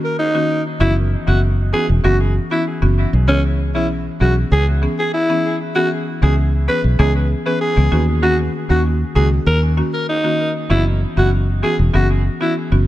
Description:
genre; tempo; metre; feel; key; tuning
afrobeats; 97 BPM; 4/4; straight; C# dorian; A4 = 440 Hz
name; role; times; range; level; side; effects
breathy alto saxophone; melody; 0.0-12.5 s; C#4 to B4; -20 LUFS; equal; dub echo
buzzing marimba with medium hard mallets; accompaniment; 0.0-12.9 s; D#3 to G#4; -22 LUFS; left 1 dB; dub echo
fingered electric bass; bass; 0.8-12.9 s; E1 to D#2; -15 LUFS; equal; none
room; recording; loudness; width
light reverb, studio ambience; echo-heavy mix; -14 LUFS; side -14 dB against mid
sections
0.0-12.9 A section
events
none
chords
0.0 D#m7; 0.8 F#7sus4; 3.3 C#m7; 7.9 D#m7; 10.7 F#7sus4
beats
0.19 | 0.80 1.42 2.04 2.66 | 3.28 3.90 4.52 5.13 | 5.75 6.37 6.99 7.61 | 8.23 8.85 9.46 10.08 | 10.70 11.32 11.94 12.56

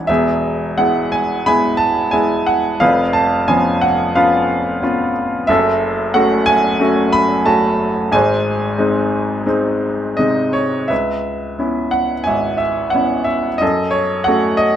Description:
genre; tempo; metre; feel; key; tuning
classical, lyrical solo piano; 89 BPM; 4/4; rubato; C# minor; A4 = 440 Hz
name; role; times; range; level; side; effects
bright baby grand piano; solo; 0.0-14.8 s; E1 to B5; -14 LUFS; equal; none
room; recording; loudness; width
light reverb; minimal, uncompressed stereo recording; -14 LUFS; side -10 dB against mid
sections
0.1-10.9 A section; 10.9-14.8 B section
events
none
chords
0.1 E; 2.8 C#7/E#; 5.5 F#m; 8.1 G#; 10.9 C#m7; 13.6 F#m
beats
| 0.09 0.79 1.47 2.14 | 2.81 3.49 4.16 4.83 | 5.49 6.16 6.81 7.47 | 8.13 8.80 9.48 10.20 | 10.91 11.59 12.27 12.95 | 13.62 14.28

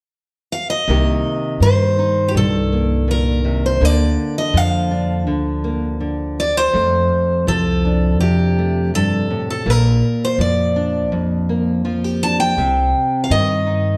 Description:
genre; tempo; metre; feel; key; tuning
folk; 82 BPM; 4/4; straight; C dorian; A4 = 441 Hz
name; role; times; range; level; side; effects
picked steel-string acoustic guitar; melody; 0.5-14.0 s; G4 to A5; -22 LUFS; equal; none
nylon-string guitar; accompaniment; 0.9-14.0 s; F2 to G4; -22 LUFS; equal; none
upright bass; bass; 0.9-14.0 s; Bb1 to G2; -21 LUFS; equal; none
room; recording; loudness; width
wet recital hall reverb, RT60 1.2 s; none; -17 LUFS; mono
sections
0.9-14.0 A section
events
none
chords
0.0 N.C.; 0.9 Cm7; 3.8 Bb/D; 6.7 F6; 9.7 Bb6; 12.6 Cm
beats
0.15 | 0.88 1.61 2.35 3.08 | 3.81 4.55 5.28 6.01 | 6.74 7.47 8.20 8.93 | 9.66 10.39 11.12 11.85 | 12.57 13.30

